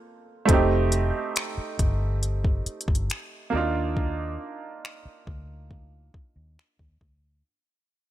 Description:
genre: contemporary R&B.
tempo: 69 BPM.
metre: 4/4.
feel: straight.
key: unclear.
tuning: A4 = 439 Hz.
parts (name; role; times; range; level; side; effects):
bright baby grand piano; accompaniment; 0.0-7.5 s; A3 to A4; -26 LUFS; right 4 dB; low-pass filter.
vintage muted fingered electric bass; bass; 0.5-7.4 s; F1 to Eb2; -27 LUFS; left 1 dB; none.
smooth R&B drum kit; drums; 0.5-7.2 s; finger snaps, hi-hat, kick drum; -26 LUFS; left 1 dB; none.
room: little or no reverb.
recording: none.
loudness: -23 LUFS.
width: side -13 dB against mid.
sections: 0.5-7.4 A section.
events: break 0.0-0.5; fade-out 0.5-7.4.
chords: 0.5 F9; 3.5 Bbadd11.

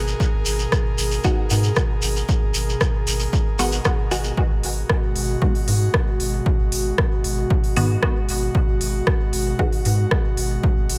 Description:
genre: dub techno.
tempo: 115 BPM.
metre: 4/4.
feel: straight.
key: G# minor.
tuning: A4 = 440 Hz.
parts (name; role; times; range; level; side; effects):
airy breathy pad; sustained chords; 0.0-11.0 s; B2 to A#4; -29 LUFS; equal; chorus, sidechain pumping.
soft dub sub bass; bass; 0.0-11.0 s; G#1 to G#2; -25 LUFS; equal; sidechain pumping.
shekere; percussion; 0.1-4.3 s; none; -31 LUFS; equal; none.
electronic kick drum; drums; 0.2-10.7 s; none; -24 LUFS; equal; none.
deep house drum kit; drums; 0.5-11.0 s; hi-hat, rim click; -29 LUFS; equal; none.
filtered dub chord stab; stabs; 1.2-9.9 s; D#3 to F#4; -30 LUFS; equal; phaser, sidechain pumping, dub echo.
room: light reverb, digital ambience.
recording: none.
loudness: -21 LUFS.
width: mono.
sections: 0.0-4.4 A section; 4.4-11.0 A section.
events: none.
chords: 0.0 G#m7.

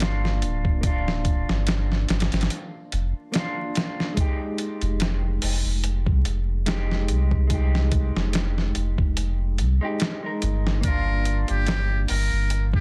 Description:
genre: trip hop.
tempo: 72 BPM.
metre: 4/4.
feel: swing 55% on 16ths.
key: G phrygian.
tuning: A4 = 442 Hz.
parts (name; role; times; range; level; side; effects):
mellow electric guitar; accompaniment; 0.0-12.8 s; Ab3 to Bb4; -34 LUFS; equal; harmonic tremolo, tape echo.
warm sub bass; bass; 0.0-12.8 s; D1 to C2; -26 LUFS; equal; none.
dusty soul sampler-style drum kit; drums; 0.0-12.8 s; hi-hat, kick drum, snare drum; -28 LUFS; equal; none.
trumpet with metal mute; melody; 10.9-12.8 s; G4 to Bb4; -31 LUFS; equal; none.
room: little or no reverb.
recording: dense, heavily limited modern master, vinyl crackle.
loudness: -24 LUFS.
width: mono.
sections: 0.0-12.8 A section.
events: none.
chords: 0.0 Gm7; 4.2 Fm7; 10.8 Gm7.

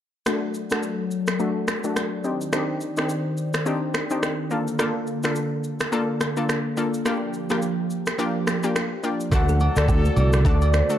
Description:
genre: afrobeats.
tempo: 106 BPM.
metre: 4/4.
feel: swing 58% on 16ths.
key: unclear.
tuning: A4 = 439 Hz.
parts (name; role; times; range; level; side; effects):
analog pluck; accompaniment; 0.3-11.0 s; A3 to A4; -26 LUFS; left 2 dB; chorus, low-pass filter.
hollow soft pad; sustained chords; 0.3-11.0 s; D3 to D5; -29 LUFS; right 1 dB; chorus, low-pass filter.
afro-pop drum kit; drums; 0.3-11.0 s; finger snaps, kick drum, rim click, shaker; -26 LUFS; equal; none.
warm velvety synth lead; melody; 9.0-11.0 s; D5 to F#5; -27 LUFS; right 1 dB; chorus.
warm horn section; second line; 9.3-11.0 s; F#3 to A4; -32 LUFS; left 4 dB; none.
fingered electric bass; bass; 9.3-10.8 s; C2 to D2; -19 LUFS; equal; none.
agogo bells and woodblock; percussion; 9.3-10.7 s; none; -35 LUFS; right 1 dB; none.
kalimba; riff; 9.5-10.8 s; F#4 to C5; -31 LUFS; right 3 dB; none.
room: light reverb.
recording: dark, warm production.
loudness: -21 LUFS.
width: side -11 dB against mid.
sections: 0.3-9.3 A section; 9.3-11.0 B section.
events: filter sweep 0.3-9.3.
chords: 0.3 D; 2.2 Cmadd9; 4.5 Bbmaj7; 7.1 Gm7; 9.3 D.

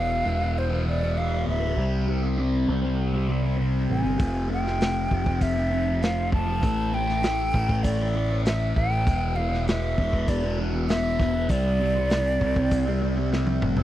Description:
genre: psychedelic rock.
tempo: 99 BPM.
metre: 4/4.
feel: straight.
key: unclear.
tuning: A4 = 438 Hz.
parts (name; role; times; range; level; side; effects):
breathy hollow jazz flute; melody; 0.0-13.3 s; C5 to A5; -28 LUFS; equal; tape echo.
fuzz guitar; riff; 0.0-13.8 s; E2 to C4; -27 LUFS; left 1 dB; distortion, phaser.
growling picked electric bass; bass; 0.0-13.8 s; D1 to C2; -26 LUFS; equal; overdrive.
crunchy breakbeat drum kit; drums; 4.2-13.8 s; hi-hat, kick drum, snare drum, toms; -26 LUFS; equal; none.
room: little or no reverb.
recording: dry, close 1970s-style studio recording.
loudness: -22 LUFS.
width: side -13 dB against mid.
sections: 0.0-13.8 A section.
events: drum fill 13.3-13.8.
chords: 0.0 E5; 1.8 C5; 4.2 F5; 6.6 A5; 9.1 E5; 11.5 Csus2.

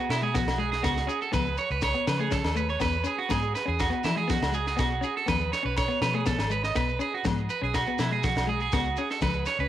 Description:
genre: highlife guitar band.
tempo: 122 BPM.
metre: 4/4.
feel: straight.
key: E major.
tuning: A4 = 442 Hz.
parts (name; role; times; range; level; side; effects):
clean electric guitar; accompaniment; 0.0-9.7 s; G#3 to C#4; -34 LUFS; left 7 dB; vibrato effect.
electric guitar at the edge of break-up; arpeggios; 0.0-9.7 s; E4 to D#5; -28 LUFS; right 6 dB; tape echo.
vintage muted fingered electric bass; bass; 0.1-9.7 s; G#1 to E3; -31 LUFS; equal; none.
tight funk drum kit; drums; 0.1-9.5 s; kick drum, snare drum; -32 LUFS; equal; cassette tape.
agogo bells; percussion; 0.1-9.3 s; none; -36 LUFS; left 6 dB; none.
congas; percussion; 0.1-9.5 s; none; -36 LUFS; left 6 dB; none.
shekere; percussion; 0.1-9.6 s; none; -40 LUFS; left 4 dB; none.
room: small room reverb.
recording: home recording on cassette.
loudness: -24 LUFS.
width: side -12 dB against mid.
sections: 0.0-9.7 A section.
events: none.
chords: 0.0 E/B; 0.8 A/C#; 2.8 E; 4.8 B; 6.8 E/B (rootless); 8.7 N.C..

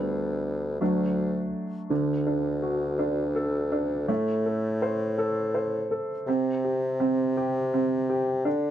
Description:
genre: six-eight pop ballad.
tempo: 55 BPM (dotted quarters).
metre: 6/8.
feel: straight.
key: unclear.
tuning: A4 = 440 Hz.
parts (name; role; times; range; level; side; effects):
warm baby grand piano; accompaniment; 0.0-8.7 s; D3 to C5; -26 LUFS; right 2 dB; none.
mellow bassoon; bass; 0.0-8.7 s; D2 to D3; -28 LUFS; left 1 dB; none.
room: light reverb.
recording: dry, close 1970s-style studio recording.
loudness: -24 LUFS.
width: side -10 dB against mid.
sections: 0.0-1.9 A section; 1.9-8.7 B section.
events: grand piano solo 0.0-1.9.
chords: 0.0 G/D; 0.8 D; 4.1 Am; 6.3 C5.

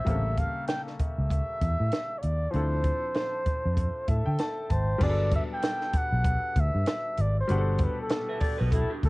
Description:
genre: lush 1970s-style soul.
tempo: 97 BPM.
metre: 4/4.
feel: swing 58% on 16ths.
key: G major.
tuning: A4 = 440 Hz.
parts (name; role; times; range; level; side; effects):
breathy flugelhorn; melody; 0.0-9.1 s; A4 to G5; -31 LUFS; equal; plate reverb.
clear grand piano; accompaniment; 0.0-9.1 s; B2 to A5; -36 LUFS; left 2 dB; cassette tape, plate reverb.
electric guitar through a small old amp; riff; 0.0, 8.3-9.1 s; D4 to E5; -32 LUFS; equal; wide subtle chorus, cassette tape.
vintage muted fingered electric bass; bass; 0.1-9.1 s; G1 to D3; -26 LUFS; equal; none.
compact cocktail drum kit; drums; 0.1-9.1 s; crash cymbal, hi-hat, kick drum, snare drum; -29 LUFS; equal; cassette tape.
room: light reverb.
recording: home recording on cassette.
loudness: -25 LUFS.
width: side -22 dB against mid.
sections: 0.0-5.0 A section; 5.0-9.1 B section.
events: grand piano fill 3.8-5.0.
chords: 0.1 A7b9; 2.5 Dm7; 5.0 Gmaj9.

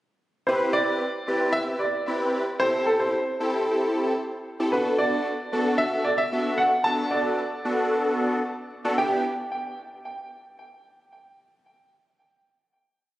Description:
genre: pop.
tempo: 113 BPM.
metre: 4/4.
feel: straight.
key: E minor.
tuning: A4 = 440 Hz.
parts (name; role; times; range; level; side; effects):
warm baby grand piano; melody; 0.5-9.2 s; A4 to A5; -25 LUFS; right 1 dB; ping-pong delay.
big bright polysynth; accompaniment; 0.5-9.2 s; B3 to B4; -25 LUFS; equal; analog chorus.
room: moderate lush hall reverb, RT60 2.8 s.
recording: recorded on a phone in the room, studio reverb.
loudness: -22 LUFS.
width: side -15 dB against mid.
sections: 0.5-9.0 verse; 9.0-11.1 final chord.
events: none.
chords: 0.5 Cmaj7; 2.6 Am7; 4.7 Bm7; 9.0 Em7.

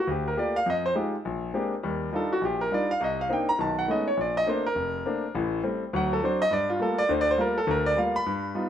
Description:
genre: jazz.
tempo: 205 BPM.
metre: 4/4.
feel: swing 61% on 8ths.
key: G minor.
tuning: A4 = 444 Hz.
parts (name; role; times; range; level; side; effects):
clear concert grand piano; solo; 0.0-8.7 s; F1 to B5; -24 LUFS; equal; none.
room: moderate large studio reverb, RT60 0.8 s.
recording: none.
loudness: -24 LUFS.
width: side -9 dB against mid.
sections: 0.0-8.7 A section.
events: grand piano solo 0.0-8.7.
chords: 0.0 Gm9; 0.7 Fm9; 1.2 Bb13; 1.8 Ebmaj9; 3.0 Cm9; 3.6 B13; 4.2 Bbmaj9; 5.3 Am7; 5.9 D7; 6.5 Gm9.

